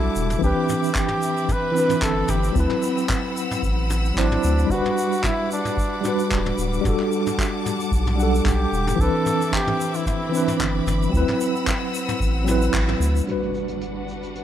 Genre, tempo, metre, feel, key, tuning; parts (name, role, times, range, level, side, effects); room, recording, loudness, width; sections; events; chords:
sunset chillout; 112 BPM; 4/4; swing 54% on 16ths; G major; A4 = 441 Hz
clear flugelhorn; melody; 0.0-10.6 s; D4 to B4; -26 LUFS; equal; ping-pong delay
tine electric piano; accompaniment; 0.0-14.4 s; E3 to F#5; -23 LUFS; moving between left 4 dB and right 3 dB; overdrive, fast stereo tremolo, auto-pan, low-pass filter, tape echo
clear studio string section; sustained chords; 0.0-14.4 s; G3 to E6; -31 LUFS; left 2 dB; low-pass filter
round analog bass; bass; 0.0-13.2 s; D1 to D2; -22 LUFS; equal; tube saturation
vintage brush drum kit; drums; 0.2-14.4 s; handclaps, hi-hat, shaker, toms; -29 LUFS; equal; low-pass filter on toms, low-pass filter on hats, low-pass filter on snare, low-pass filter on perc, low-pass filter on room
electronic kick drum; drums; 0.4-12.9 s; -26 LUFS; equal
impact; sound effects; 13.3-14.4 s; -34 LUFS; equal
light reverb, small room reverb; rough home demo mix; -19 LUFS; side -10 dB against mid
0.0-13.3 A section; 13.3-14.4 B section
band accent 12.7; impact 13.3-14.4
0.4 Cmaj9; 2.6 D13; 4.7 Gmaj7; 6.8 Em11; 9.0 Cmaj9; 11.1 D13; 13.3 Gmaj7